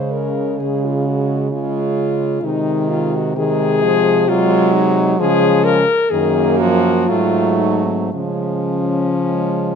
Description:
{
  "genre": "classical, lyrical piece for horn quartet",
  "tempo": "54-67 BPM",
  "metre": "3/4",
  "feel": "rubato",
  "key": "Db major",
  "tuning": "A4 = 439 Hz",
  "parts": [
    { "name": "dark French horn", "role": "melody", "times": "0.0-9.8 s", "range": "C4 to C5", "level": "-18 LUFS", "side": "left 7 dB", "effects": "none" },
    { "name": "warm French horn", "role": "second line", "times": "0.0-9.8 s", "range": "Ab3 to Bb3", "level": "-21 LUFS", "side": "right 11 dB", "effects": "none" },
    { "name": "warm French horn", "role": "accompaniment", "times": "0.0-9.8 s", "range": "Db3 to Gb3", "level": "-20 LUFS", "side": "left 1 dB", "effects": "none" },
    { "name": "mellow French horn", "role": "bass", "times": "0.0-9.8 s", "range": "Gb2 to Db3", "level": "-22 LUFS", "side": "right 3 dB", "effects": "none" }
  ],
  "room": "light reverb",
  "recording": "close, detailed microphones",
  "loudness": "-14 LUFS",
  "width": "side -6 dB against mid",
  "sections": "0.0-9.8 A section",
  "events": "none",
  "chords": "0.0 Db; 2.4 Ab/C; 4.3 Ab7/C; 5.2 Db; 6.1 Ebm/Gb; 7.1 Ab13b9; 8.1 Db",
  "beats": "0.62 1.53 | 2.43 3.35 4.27 | 5.19 6.11 7.08 | 8.13 9.25"
}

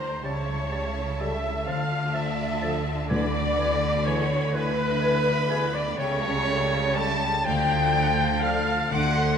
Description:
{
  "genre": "classical, slow romantic movement for symphony orchestra",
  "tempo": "41 BPM (dotted quarters)",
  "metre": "6/8",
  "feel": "rubato",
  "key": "unclear",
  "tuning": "A4 = 444 Hz",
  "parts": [
    { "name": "rich studio violin section", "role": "melody", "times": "0.0-9.4 s", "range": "F5 to D6", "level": "-37 LUFS", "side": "left 3 dB", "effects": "none" },
    { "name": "bright clarinet", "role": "second line", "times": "0.0-9.4 s", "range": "B4 to A5", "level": "-34 LUFS", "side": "left 3 dB", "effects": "none" },
    { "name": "mellow hollow silver concert flute", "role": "second line", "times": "0.0-9.4 s", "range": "B4 to A5", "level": "-36 LUFS", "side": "left 3 dB", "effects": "none" },
    { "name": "rich studio violin section", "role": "second line", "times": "0.0-9.4 s", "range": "D4 to F5", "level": "-38 LUFS", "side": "left 3 dB", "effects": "none" },
    { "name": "rich studio viola section", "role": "accompaniment", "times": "0.0-9.4 s", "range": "B4 to A5", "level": "-30 LUFS", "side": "left 1 dB", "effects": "none" },
    { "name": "concert harp", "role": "arpeggios", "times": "0.0-9.4 s", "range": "C#3 to D5", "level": "-35 LUFS", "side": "left 9 dB", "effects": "none" },
    { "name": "bright trumpet", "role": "stabs", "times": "0.0-9.4 s", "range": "B4 to A5", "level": "-30 LUFS", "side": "left 1 dB", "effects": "none" },
    { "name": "clear studio double bass section", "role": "bass", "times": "0.0-9.4 s", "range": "C#2 to D2", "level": "-30 LUFS", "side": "right 3 dB", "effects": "none" },
    { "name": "rich studio cello section", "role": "bass", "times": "0.0-9.4 s", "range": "C#3 to D3", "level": "-31 LUFS", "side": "right 2 dB", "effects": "none" },
    { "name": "warm oboe", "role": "second line", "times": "0.2-9.4 s", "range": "G#5 to C6", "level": "-38 LUFS", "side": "right 1 dB", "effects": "none" },
    { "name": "mellow bassoon", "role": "accompaniment", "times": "0.2-9.4 s", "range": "E3 to A3", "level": "-37 LUFS", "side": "right 2 dB", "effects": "none" },
    { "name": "mellow French horn section", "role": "sustained chords", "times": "1.2-8.6 s", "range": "E3 to A4", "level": "-37 LUFS", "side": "left 4 dB", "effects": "none" },
    { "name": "timpani", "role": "percussion", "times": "3.1-4.5 s", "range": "D3", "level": "-31 LUFS", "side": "left 2 dB", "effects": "none" }
  ],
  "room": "moderate scoring stage reverb, RT60 1.6 s",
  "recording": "none",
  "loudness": "-22 LUFS",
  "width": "side -7 dB against mid",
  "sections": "0.0-9.4 A section",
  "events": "none",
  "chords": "0.2 A7/C#; 1.7 Dm; 3.1 E7/D; 6.0 A7/C#; 7.5 Dm",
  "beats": "| 0.24 1.67 | 3.10 4.55 | 5.98 7.45 | 8.92"
}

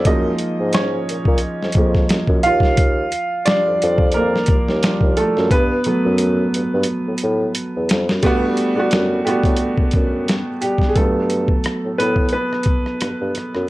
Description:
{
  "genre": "R&B, neo-soul",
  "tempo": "88 BPM",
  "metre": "4/4",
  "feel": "swing 53% on 16ths",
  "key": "unclear",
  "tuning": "A4 = 440 Hz",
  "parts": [
    { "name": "warm upright piano", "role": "accompaniment", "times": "0.0-13.7 s", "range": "E#3 to F5", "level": "-19 LUFS", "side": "right 1 dB", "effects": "none" },
    { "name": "dark bassoon", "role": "bass", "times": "0.0-13.7 s", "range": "Eb2 to A#2", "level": "-21 LUFS", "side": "equal", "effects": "none" },
    { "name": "boom bap sampler-style drum kit", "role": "drums", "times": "0.1-13.6 s", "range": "hi-hat, kick drum, rim click, snare drum", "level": "-18 LUFS", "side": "equal", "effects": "none" }
  ],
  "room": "light reverb",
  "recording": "dark, warm production",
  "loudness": "-15 LUFS",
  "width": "side -18 dB against mid",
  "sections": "0.0-8.2 A section; 8.2-11.0 B section; 11.0-13.7 C section",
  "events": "upright piano solo 0.0-8.2, 11.0-13.7; drum fill 5.5-8.2",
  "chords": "0.0 F#maj9; 2.4 Ebmaj9; 5.5 Gmaj9",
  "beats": "| 0.05 0.73 1.41 2.09 | 2.78 3.46 4.14 4.82 | 5.50 6.18 6.87 7.55 | 8.23 8.91 9.59 10.28 | 10.96 11.64 12.32 13.00 | 13.69"
}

